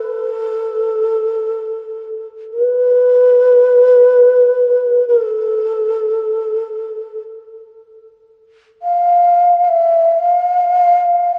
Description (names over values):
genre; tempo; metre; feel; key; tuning
world meditative; free time; none; none; unclear; A4 = 440 Hz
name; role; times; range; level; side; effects
breathy mellow low xiao; solo; 0.0-11.4 s; A4 to F5; -14 LUFS; equal; none
room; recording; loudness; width
wet church reverb, RT60 3.7 s; worn, warbling old tape, cassette tape, warbly pitch drift; -13 LUFS; mono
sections
0.0-11.4 A section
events
none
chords
none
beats
free time